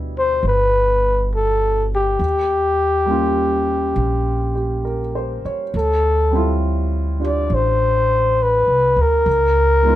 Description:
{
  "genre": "jazz ballad",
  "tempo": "68 BPM",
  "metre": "4/4",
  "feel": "swing 66% on 8ths",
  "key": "unclear",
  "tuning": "A4 = 439 Hz",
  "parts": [
    { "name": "warm concert grand piano", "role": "accompaniment", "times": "0.0-10.0 s", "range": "B2 to Db5", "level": "-26 LUFS", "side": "right 3 dB", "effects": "none" },
    { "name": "upright bass", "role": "bass", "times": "0.0-10.0 s", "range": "G1 to Eb2", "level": "-20 LUFS", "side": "equal", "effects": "none" },
    { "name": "breathy flugelhorn", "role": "melody", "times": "0.2-10.0 s", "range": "G4 to D5", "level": "-17 LUFS", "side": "left 2 dB", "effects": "plate reverb" }
  ],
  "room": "light reverb",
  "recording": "none",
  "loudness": "-16 LUFS",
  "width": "side -14 dB against mid",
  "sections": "0.0-10.0 A section",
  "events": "none",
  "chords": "0.0 Em7; 2.2 Eb9; 5.7 Dm11; 9.3 Db7sus2",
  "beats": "0.43 1.31 | 2.19 3.07 3.96 4.85 | 5.74 6.62 7.51 8.39 | 9.27"
}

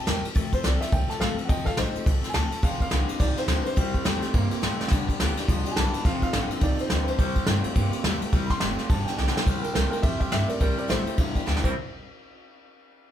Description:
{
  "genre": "rockabilly",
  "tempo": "211 BPM",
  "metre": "4/4",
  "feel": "swing 60% on 8ths",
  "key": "C major",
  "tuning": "A4 = 440 Hz",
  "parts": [
    { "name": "warm upright piano", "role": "melody", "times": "0.0-11.7 s", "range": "Eb4 to C6", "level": "-32 LUFS", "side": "equal", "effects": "none" },
    { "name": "picked steel-string acoustic guitar", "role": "accompaniment", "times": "0.0-11.7 s", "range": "F2 to A4", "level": "-33 LUFS", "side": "left 5 dB", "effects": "none" },
    { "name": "upright bass", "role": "bass", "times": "0.1-11.7 s", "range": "F1 to Bb2", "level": "-29 LUFS", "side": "equal", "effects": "none" },
    { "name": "soft brush drum kit", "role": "drums", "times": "0.1-11.7 s", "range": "crash cymbal, kick drum, ride cymbal, snare drum", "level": "-25 LUFS", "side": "equal", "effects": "none" },
    { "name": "electric guitar through a small old amp", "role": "riff", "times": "2.6-11.7 s", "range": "F2 to E4", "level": "-31 LUFS", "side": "right 1 dB", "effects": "none" }
  ],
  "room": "moderate large studio reverb, RT60 1.0 s",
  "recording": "band playing live in one room",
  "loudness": "-22 LUFS",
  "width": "side -10 dB against mid",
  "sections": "0.0-9.5 A section; 9.5-11.8 B section; 11.8-12.9 C section",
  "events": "drum fill 4.8, 9.2, 11.5",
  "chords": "0.4 F; 2.6 Fm7; 3.8 C; 4.9 G; 6.1 F; 7.2 C; 8.9 G; 9.5 C; 11.2 G; 11.6 C; 11.8 N.C.",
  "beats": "0.07 | 0.36 0.64 0.93 1.21 | 1.50 1.78 2.07 2.35 | 2.63 2.92 3.21 3.49 | 3.77 4.06 4.34 4.63 | 4.91 5.20 5.48 5.77 | 6.05 6.34 6.62 6.91 | 7.19 7.48 7.76 8.04 | 8.33 8.62 8.90 9.18 | 9.47 9.75 10.04 10.32 | 10.61 10.89 11.18 11.46"
}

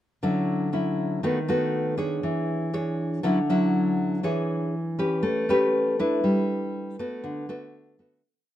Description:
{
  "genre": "bossa nova",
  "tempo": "120 BPM",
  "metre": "4/4",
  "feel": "straight",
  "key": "D major",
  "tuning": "A4 = 441 Hz",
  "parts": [
    { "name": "nylon-string guitar", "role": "solo", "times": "0.2-8.2 s", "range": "D3 to C#5", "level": "-23 LUFS", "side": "equal", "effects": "none" }
  ],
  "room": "light reverb",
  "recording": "none",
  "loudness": "-23 LUFS",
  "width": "side -12 dB against mid",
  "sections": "0.2-8.2 A section",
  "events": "fade-out 6.2-8.2",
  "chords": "0.2 Dmaj9; 1.2 B7/D#; 2.2 E6; 3.2 Dmaj9; 4.2 E6; 5.2 A9; 6.2 G6; 7.2 D6",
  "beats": "| 0.23 0.73 1.23 1.73 | 2.23 2.73 3.23 3.73 | 4.23 4.73 5.24 5.74 | 6.24 6.74 7.24 7.75"
}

